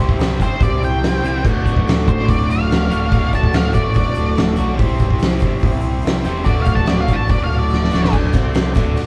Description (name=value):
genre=garage rock duo or trio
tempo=143 BPM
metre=4/4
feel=straight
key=D mixolydian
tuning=A4 = 440 Hz
part: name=overdriven combo organ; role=sustained chords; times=0.0-9.1 s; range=E4 to E5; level=-32 LUFS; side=equal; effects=none
part: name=overdriven electric guitar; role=riff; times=0.0-9.0 s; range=D2 to C5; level=-24 LUFS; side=equal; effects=none
part: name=growling picked electric bass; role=bass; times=0.0-9.0 s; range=D1 to C2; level=-23 LUFS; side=equal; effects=overdrive
part: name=oversized low-tuned drum kit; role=drums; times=0.1-9.1 s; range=crash cymbal, hi-hat, kick drum, ride cymbal, snare drum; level=-20 LUFS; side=equal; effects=none
part: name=tube shaker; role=percussion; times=0.1-9.1 s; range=none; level=-53 LUFS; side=equal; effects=none
part: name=octave-fuzz lead guitar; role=melody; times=0.4-8.1 s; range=C5 to A5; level=-26 LUFS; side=equal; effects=distortion
room=moderate large studio reverb, RT60 0.9 s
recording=band playing live in one room, cassette tape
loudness=-17 LUFS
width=mono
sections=0.0-8.1 A section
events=drum fill 7.7-8.1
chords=0.0 C; 1.4 D; 4.8 C; 6.5 D